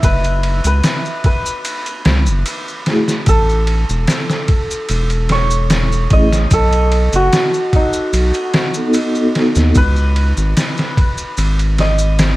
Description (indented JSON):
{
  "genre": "trip hop",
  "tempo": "74 BPM",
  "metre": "4/4",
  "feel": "straight",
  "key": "unclear",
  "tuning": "A4 = 439 Hz",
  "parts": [
    { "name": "santur", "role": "melody", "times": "0.0-12.4 s", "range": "D#4 to E5", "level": "-20 LUFS", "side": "right 1 dB", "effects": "tape echo" },
    { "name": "round analog bass", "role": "bass", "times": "0.0-12.4 s", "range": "E1 to D#2", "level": "-14 LUFS", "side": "equal", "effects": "tube saturation" },
    { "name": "trip hop sampler-style drum kit", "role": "drums", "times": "0.0-12.4 s", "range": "kick drum, ride cymbal, snare drum", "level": "-17 LUFS", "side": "equal", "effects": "none" },
    { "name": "maracas", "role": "percussion", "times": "0.0-12.4 s", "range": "none", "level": "-28 LUFS", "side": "left 1 dB", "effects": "none" },
    { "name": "vibraphone with soft mallets", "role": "accompaniment", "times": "2.9-9.7 s", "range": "A3 to A4", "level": "-17 LUFS", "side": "equal", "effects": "tremolo" }
  ],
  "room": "small room ambience",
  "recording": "vinyl crackle",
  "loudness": "-13 LUFS",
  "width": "side -18 dB against mid",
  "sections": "0.0-12.4 A section",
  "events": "none",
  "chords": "0.0 F#7(no3); 3.3 A; 6.5 B7; 9.8 C#7sus2"
}